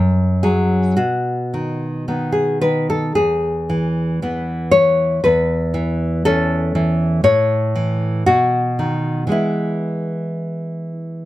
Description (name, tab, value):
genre	romantic piece for solo classical guitar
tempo	54-61 BPM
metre	2/4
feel	rubato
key	E major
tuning	A4 = 439 Hz
part	nylon-string guitar	solo	0.0-11.3 s	E2 to C#5	-16 LUFS	equal	none
room	light reverb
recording	close, detailed microphones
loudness	-16 LUFS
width	side -15 dB against mid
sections	0.0-11.3 A section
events	none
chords	0.0 N.C.; 1.0 B; 3.2 E; 5.2 A/E; 7.2 A; 8.3 B; 9.3 E